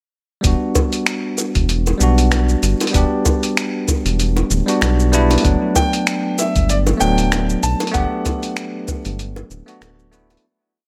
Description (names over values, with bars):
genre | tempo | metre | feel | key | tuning
sunset chillout | 96 BPM | 4/4 | swing 56% on 16ths | E minor | A4 = 441 Hz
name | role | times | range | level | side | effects
bell-like tine electric piano | accompaniment | 0.4-10.5 s | F#3 to G4 | -22 LUFS | equal | tape echo
round analog bass | bass | 0.4-10.4 s | D1 to B1 | -20 LUFS | equal | none
dusty soul sampler-style drum kit | drums | 0.4-10.5 s | finger snaps, hi-hat, shaker | -24 LUFS | equal | overdrive
electronic kick drum | drums | 0.4-9.0 s | none | -21 LUFS | equal | none
bongos | percussion | 0.8-10.4 s | none | -27 LUFS | equal | none
clear concert grand piano | melody | 5.8-9.8 s | D5 to A5 | -25 LUFS | equal | tape echo
room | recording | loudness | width
light reverb | none | -17 LUFS | mono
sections
0.4-10.4 groove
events
fade-out 7.1-10.4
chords
0.4 Em9; 5.4 Gmaj9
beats
| 0.44 1.07 1.69 2.32 | 2.94 3.57 4.19 4.82 | 5.44 6.07 6.69 7.32 | 7.94 8.57 9.19 9.82